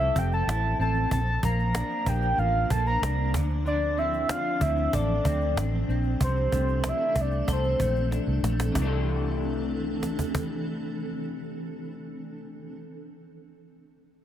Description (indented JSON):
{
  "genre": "indie pop, bedroom pop",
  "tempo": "94 BPM",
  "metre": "4/4",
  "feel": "straight",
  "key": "C mixolydian",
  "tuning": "A4 = 440 Hz",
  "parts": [
    { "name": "soft octave-layered synth lead", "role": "melody", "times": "0.0-8.1 s", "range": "C5 to Bb5", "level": "-28 LUFS", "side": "equal", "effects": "lush chorus, tape echo" },
    { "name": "electric guitar through a small old amp", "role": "accompaniment", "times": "0.0-12.8 s", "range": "C3 to A4", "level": "-33 LUFS", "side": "left 3 dB", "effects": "analog chorus, vibrato effect" },
    { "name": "granular cloud pad", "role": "sustained chords", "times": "0.0-12.1 s", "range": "E3 to C5", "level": "-36 LUFS", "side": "right 1 dB", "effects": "built-in reverb" },
    { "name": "vintage muted fingered electric bass", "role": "bass", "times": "0.0-12.8 s", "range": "F1 to D2", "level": "-27 LUFS", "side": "right 1 dB", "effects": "none" },
    { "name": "cajon", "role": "drums", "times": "0.0-10.5 s", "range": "none", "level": "-31 LUFS", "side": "right 1 dB", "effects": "none" }
  ],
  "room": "light reverb",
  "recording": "none",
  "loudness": "-24 LUFS",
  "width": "side -11 dB against mid",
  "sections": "0.0-8.8 A section; 8.8-11.3 B section",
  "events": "drum fill 8.1-8.8",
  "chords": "0.0 Fmaj7; 1.1 Bbmaj7; 6.2 C69",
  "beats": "0.48 | 1.11 1.75 2.38 3.02 | 3.66 4.29 4.93 5.57 | 6.21 6.84 7.48 8.12 | 8.75 9.39 10.03 10.66"
}